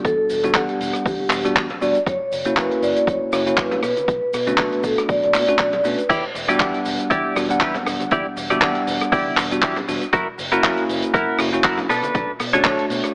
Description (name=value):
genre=nu-disco, nu disco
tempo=119 BPM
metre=4/4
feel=swing 55% on 16ths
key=E dorian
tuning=A4 = 436 Hz
part: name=vibraphone with medium mallets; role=melody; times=0.0-6.1 s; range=G4 to D5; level=-20 LUFS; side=equal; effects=digital delay
part: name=bell-like tine electric piano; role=accompaniment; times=0.0-13.1 s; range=G3 to F#5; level=-23 LUFS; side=equal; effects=low-pass filter
part: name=vintage muted fingered electric bass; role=bass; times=0.0-13.0 s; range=E1 to B2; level=-34 LUFS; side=equal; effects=sidechain pumping
part: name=electronic kick drum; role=drums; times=0.0-12.8 s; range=none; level=-25 LUFS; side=equal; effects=overdrive
part: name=tight funk drum kit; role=drums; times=0.0-13.1 s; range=crash cymbal, handclaps, hi-hat, rim click, shaker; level=-22 LUFS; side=equal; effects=none
part: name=congas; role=percussion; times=0.4-12.6 s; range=none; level=-32 LUFS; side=equal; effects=none
part: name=direct-recorded clean electric guitar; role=riff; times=6.1-12.8 s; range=D4 to D5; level=-21 LUFS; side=equal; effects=analog chorus, vintage 12-bit sampler grit
room=moderate lush hall reverb, RT60 2.1 s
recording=AM radio sound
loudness=-17 LUFS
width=side -35 dB against mid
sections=0.0-13.1 A section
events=filter sweep on tine electric piano 0.0-13.1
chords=0.0 Em7; 2.1 F#7; 3.8 Bm7; 6.1 Em7; 10.1 F#7; 11.9 Bm7